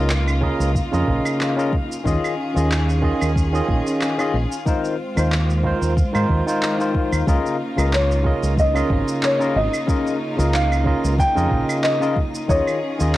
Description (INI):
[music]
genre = sunset chillout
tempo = 92 BPM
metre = 4/4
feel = swing 54% on 16ths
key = Db major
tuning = A4 = 440 Hz
[part]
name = barky tine electric piano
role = accompaniment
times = 0.0-13.2 s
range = Db3 to Eb5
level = -22 LUFS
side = moving between left 4 dB and right 4 dB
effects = auto-pan, cassette tape, tape echo
[part]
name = clear studio string section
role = sustained chords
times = 0.0-13.2 s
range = Db3 to Ab4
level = -27 LUFS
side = equal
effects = vintage 12-bit sampler grit, cassette tape
[part]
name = deep dub fingered electric bass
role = bass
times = 0.0-13.2 s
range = Ab1 to Ab2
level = -20 LUFS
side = equal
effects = none
[part]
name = drifting glass-harmonics texture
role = texture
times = 0.0-13.2 s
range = Eb4 to F5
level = -34 LUFS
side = left 2 dB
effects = chorus, built-in reverb, cassette tape
[part]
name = electronic handclaps, shaker and claves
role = drums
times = 0.1-13.2 s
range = none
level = -28 LUFS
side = right 1 dB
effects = none
[part]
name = electronic kick drum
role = drums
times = 0.4-12.6 s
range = none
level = -22 LUFS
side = equal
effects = none
[part]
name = dark baby grand piano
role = melody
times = 7.9-13.1 s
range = Db5 to G5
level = -22 LUFS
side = equal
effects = cassette tape, tape echo
[sound]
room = moderate booth ambience, RT60 0.2 s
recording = home recording on cassette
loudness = -17 LUFS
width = side -15 dB against mid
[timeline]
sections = 0.0-13.2 A section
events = none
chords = 0.0 Db69; 2.1 Eb9sus4; 4.7 Ab6/Eb; 7.3 Db69; 12.5 Eb9sus4